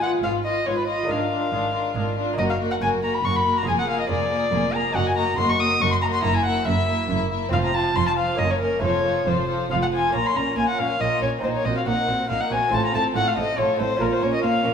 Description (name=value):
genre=classical, baroque-style concerto movement with solo episodes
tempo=140 BPM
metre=3/4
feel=straight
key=Bb minor from 5.0 s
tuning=A4 = 439 Hz
part: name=dark violin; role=melody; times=0.0-14.7 s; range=Bb4 to Eb6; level=-23 LUFS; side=left 2 dB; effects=none
part: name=warm chamber violin section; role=melody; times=0.0-14.7 s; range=A4 to Fb5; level=-35 LUFS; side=left 4 dB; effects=none
part: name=warm chamber violin section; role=second line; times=0.0-14.7 s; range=Db4 to A4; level=-30 LUFS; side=left 4 dB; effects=none
part: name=dark chamber viola section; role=accompaniment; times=0.0-14.7 s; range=F3 to F4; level=-28 LUFS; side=equal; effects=none
part: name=lute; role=accompaniment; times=0.0-14.7 s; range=F2 to Db5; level=-32 LUFS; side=right 2 dB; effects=none
part: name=dark chamber cello section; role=bass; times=0.0-14.7 s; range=F2 to Bb2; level=-30 LUFS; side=right 4 dB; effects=none
part: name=warm studio double bass section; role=bass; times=0.0-14.7 s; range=F1 to Bb1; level=-30 LUFS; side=right 4 dB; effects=none
room=wet recital hall reverb, RT60 1.7 s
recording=minimal, uncompressed stereo recording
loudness=-20 LUFS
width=side -7 dB against mid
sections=0.0-10.1 A section; 10.1-14.7 A section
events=none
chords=0.0 Fdim/Ab; 1.1 Bb7/Ab; 2.4 Ebm/Gb; 3.7 Bb7/F; 5.0 Ebm/Gb; 6.2 Gb7; 7.5 F5; 8.4 Gb; 8.8 F; 10.1 Bbm; 11.4 Cm7b5/Bb; 12.7 F/A; 14.0 Bbm